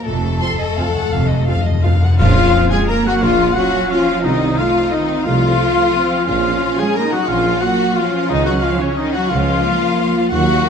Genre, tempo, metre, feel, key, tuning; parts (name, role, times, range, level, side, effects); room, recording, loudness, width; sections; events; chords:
classical, orchestral ballroom waltz; 161-193 BPM; 3/4; rubato; Bb minor; A4 = 439 Hz
rich studio violin section; second line; 0.0-10.7 s; Db4 to Bb4; -20 LUFS; left 4 dB
mellow French horn section; sustained chords; 0.0-10.7 s; A3 to Bb4; -23 LUFS; left 3 dB
rich studio cello section; bass; 0.1-10.7 s; F2 to Bb3; -23 LUFS; right 2 dB
warm studio double bass section; bass; 0.1-10.6 s; F1 to Eb2; -23 LUFS; right 3 dB
cymbal swell, clash cymbals and concert bass drum; percussion; 0.1-2.8 s; -23 LUFS; equal
timpani; percussion; 0.1-2.7, 6.3-6.8 s; F2 to Bb2; -19 LUFS; left 2 dB
warm studio violin section; melody; 0.4-10.7 s; Db5 to C6; -24 LUFS; left 2 dB
rich studio viola section; accompaniment; 0.4-10.7 s; A3 to F4; -23 LUFS; right 1 dB
clear oboe; second line; 2.2-10.7 s; Db5 to Bb5; -25 LUFS; right 1 dB
warm clarinet; second line; 2.2-10.7 s; Db4 to Bb4; -24 LUFS; equal
clear tuba; bass; 2.2-10.6 s; Bb1 to Eb2; -25 LUFS; right 4 dB
wet scoring stage reverb, RT60 1.8 s; dark, warm production; -13 LUFS; side -7 dB against mid
0.0-2.2 A section; 2.2-10.7 B section
timpani fill 0.1-2.2; band accent 2.2-2.5
0.1 F; 2.2 Bbm; 4.2 F7/C; 6.3 Bbm; 8.3 Bbm/Db